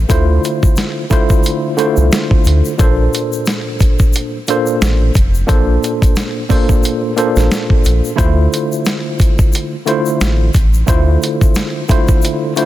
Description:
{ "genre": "hip hop, boom-bap hip-hop", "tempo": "89 BPM", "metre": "4/4", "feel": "swing 57% on 16ths", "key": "D minor", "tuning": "A4 = 440 Hz", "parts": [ { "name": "sub bass with octave", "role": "bass", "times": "0.0-11.2 s", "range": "F1 to D2", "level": "-13 LUFS", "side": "equal", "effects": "none" }, { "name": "tine electric piano", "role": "accompaniment", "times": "0.1-12.7 s", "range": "Bb2 to C5", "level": "-16 LUFS", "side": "equal", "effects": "overdrive, fast stereo tremolo, cassette tape, high-pass filter, low-pass filter" }, { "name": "dusty soul sampler-style drum kit", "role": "drums", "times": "0.1-12.7 s", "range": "hi-hat, kick drum, snare drum", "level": "-13 LUFS", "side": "equal", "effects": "vintage 12-bit sampler grit" }, { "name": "egg shaker", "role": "percussion", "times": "0.1-12.7 s", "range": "none", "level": "-31 LUFS", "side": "left 7 dB", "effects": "none" } ], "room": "little or no reverb", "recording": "dense, heavily limited modern master", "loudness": "-11 LUFS", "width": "side -14 dB against mid", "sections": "0.0-12.7 A section", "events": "none", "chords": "0.0 Dm7; 2.8 Bbmaj7; 8.2 Dm7", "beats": "| 0.10 0.77 1.44 2.12 | 2.79 3.47 4.14 4.82 | 5.49 6.16 6.84 7.51 | 8.19 8.86 9.53 10.21 | 10.88 11.56 12.23" }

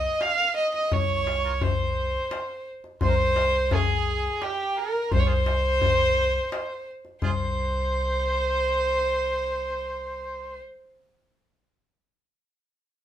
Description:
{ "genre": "Arabic maqam ensemble", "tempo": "86 BPM", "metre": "3/4", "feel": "straight", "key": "C maqam kurd", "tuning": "A4 = 441 Hz", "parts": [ { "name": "rich violin", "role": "melody", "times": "0.0-10.6 s", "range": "G4 to F5", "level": "-25 LUFS", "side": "right 1 dB", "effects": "none" }, { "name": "mellow harmonica", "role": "second line", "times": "0.0-10.6 s", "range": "Db4 to F5", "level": "-31 LUFS", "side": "right 1 dB", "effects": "none" }, { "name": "upright bass", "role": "bass", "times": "0.0-10.6 s", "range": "C2", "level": "-28 LUFS", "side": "equal", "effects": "none" }, { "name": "darbuka", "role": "percussion", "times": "0.2-7.5 s", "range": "none", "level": "-28 LUFS", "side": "left 5 dB", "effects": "none" } ], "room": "moderate studio reverb, RT60 0.6 s", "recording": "minimal, uncompressed stereo recording", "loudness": "-22 LUFS", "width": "side -10 dB against mid", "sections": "0.0-7.2 A section; 7.2-11.4 B section", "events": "none", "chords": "none", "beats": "0.21 | 0.92 1.62 2.32 | 3.02 3.72 4.42 | 5.13 5.83 6.53 | 7.23 7.93 8.63 | 9.33 10.03" }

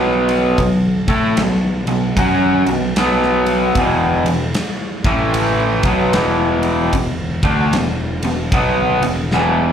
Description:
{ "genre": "blues rock power trio and southern rock", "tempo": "76 BPM", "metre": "4/4", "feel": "swing 63% on 8ths", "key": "unclear", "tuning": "A4 = 443 Hz", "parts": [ { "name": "raw garage guitar", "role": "riff", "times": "0.0-9.7 s", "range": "E2 to A4", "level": "-15 LUFS", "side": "equal", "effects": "overdrive, slapback echo" }, { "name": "fuzz picked electric bass", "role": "bass", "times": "0.0-9.7 s", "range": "E1 to A2", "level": "-22 LUFS", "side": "equal", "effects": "overdrive" }, { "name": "huge arena drum kit", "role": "drums", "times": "0.3-9.5 s", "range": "kick drum, ride cymbal, snare drum", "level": "-21 LUFS", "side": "equal", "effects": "none" } ], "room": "moderate club reverb, RT60 0.6 s", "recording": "live gig heard through the venue's PA, club reverb", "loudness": "-14 LUFS", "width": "side -8 dB against mid", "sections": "0.0-9.7 A section", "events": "drum fill 9.3-9.7", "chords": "0.0 B5; 3.8 E5; 4.9 A5; 5.7 E5", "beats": "| 0.58 1.37 2.17 2.96 | 3.75 4.54 5.34 6.13 | 6.93 7.72 8.52 9.31" }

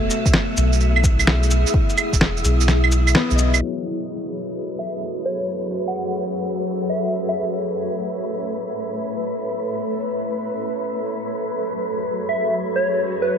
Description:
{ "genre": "future garage", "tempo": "128 BPM", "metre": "4/4", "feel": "swing 67% on 16ths", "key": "F# minor", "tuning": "A4 = 440 Hz", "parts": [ { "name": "felt-muted upright piano", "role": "accompaniment", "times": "0.0-0.1, 3.1-7.4 s", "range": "F#3 to D#5", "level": "-30 LUFS", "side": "left 5 dB", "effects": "sidechain pumping, digital delay" }, { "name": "granular cloud pad", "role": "sustained chords", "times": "0.0-13.4 s", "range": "F#3 to E5", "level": "-25 LUFS", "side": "equal", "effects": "built-in reverb, sidechain pumping" }, { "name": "soft dub sub bass", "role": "bass", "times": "0.0-3.6 s", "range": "E1 to B1", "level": "-18 LUFS", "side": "equal", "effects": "sidechain pumping" }, { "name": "wind-like tuned noise texture", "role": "texture", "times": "0.0-13.4 s", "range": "B4 to E5", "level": "-30 LUFS", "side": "equal", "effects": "built-in reverb" }, { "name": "electronic cabasa, shaker, snare drum and claves", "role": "drums", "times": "0.1-3.6 s", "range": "none", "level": "-21 LUFS", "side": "right 1 dB", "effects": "studio ambience" }, { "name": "electronic kick drum", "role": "drums", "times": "0.3-2.2 s", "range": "none", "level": "-19 LUFS", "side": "equal", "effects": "studio ambience" }, { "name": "plucky unison lead", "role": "melody", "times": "4.8-7.4, 12.3-13.3 s", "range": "B4 to F#5", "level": "-26 LUFS", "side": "equal", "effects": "dub echo" } ], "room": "light reverb", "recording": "low-pass filter", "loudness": "-19 LUFS", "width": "side -8 dB against mid", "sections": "0.0-3.6 A section; 3.6-13.4 B section", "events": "kick drops out 2.7-3.6; band accent 3.1", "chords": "0.0 E; 3.6 F#madd9; 7.4 Aadd9; 11.1 F#madd9", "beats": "0.33 0.80 1.27 | 1.74 2.21 2.68 3.15 | 3.62 4.08 4.55 5.02 | 5.49 5.96 6.43 6.90 | 7.37 7.83 8.30 8.77 | 9.24 9.71 10.18 10.65 | 11.12 11.58 12.05 12.52 | 12.99" }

